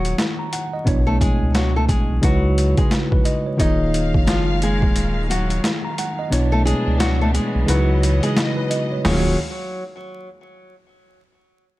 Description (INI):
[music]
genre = hip hop, boom-bap hip-hop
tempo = 88 BPM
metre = 4/4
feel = swing 61% on 16ths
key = Eb phrygian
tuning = A4 = 440 Hz
[part]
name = nylon-string guitar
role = melody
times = 0.0-9.4 s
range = F3 to Eb5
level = -25 LUFS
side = left 1 dB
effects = high-pass filter, low-pass filter, digital delay
[part]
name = tine electric piano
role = accompaniment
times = 0.0-9.4 s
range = B2 to Bb5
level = -22 LUFS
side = right 1 dB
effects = medium stereo tremolo, cassette tape, high-pass filter, low-pass filter
[part]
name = saturated sub bass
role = bass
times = 0.0-9.4 s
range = Eb1 to C#2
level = -20 LUFS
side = equal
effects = none
[part]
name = boom bap sampler-style drum kit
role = drums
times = 0.0-9.2 s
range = hi-hat, kick drum, snare drum, toms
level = -21 LUFS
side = equal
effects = overdrive
[part]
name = rich studio string section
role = sustained chords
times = 3.6-9.4 s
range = Eb3 to F5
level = -30 LUFS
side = left 1 dB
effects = high-pass filter, low-pass filter
[sound]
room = digital ambience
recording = vinyl crackle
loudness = -16 LUFS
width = side -17 dB against mid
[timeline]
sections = 0.0-9.0 A section; 9.0-11.8 B section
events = kick muted 6.3-9.0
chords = 0.0 Ebm11; 0.9 Bm11; 2.2 Dbm11; 3.6 Ebm11; 6.3 Bm11; 7.7 Dbm11; 9.0 Ebm11